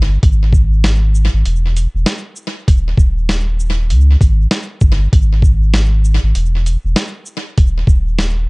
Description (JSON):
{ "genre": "hip hop, boom-bap hip-hop", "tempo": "98 BPM", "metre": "4/4", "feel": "swing 59% on 16ths", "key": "unclear", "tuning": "A4 = 440 Hz", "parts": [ { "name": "warm sub bass", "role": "bass", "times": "0.0-8.5 s", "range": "D#1 to C#2", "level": "-13 LUFS", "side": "equal", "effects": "none" }, { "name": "boom bap sampler-style drum kit", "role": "drums", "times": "0.2-8.4 s", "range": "hi-hat, kick drum, shaker, snare drum", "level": "-14 LUFS", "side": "equal", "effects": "vintage 12-bit sampler grit, tape echo" } ], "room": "little or no reverb", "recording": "echo-heavy mix", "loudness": "-11 LUFS", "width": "side -29 dB against mid", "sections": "0.0-8.5 A section", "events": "none", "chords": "none" }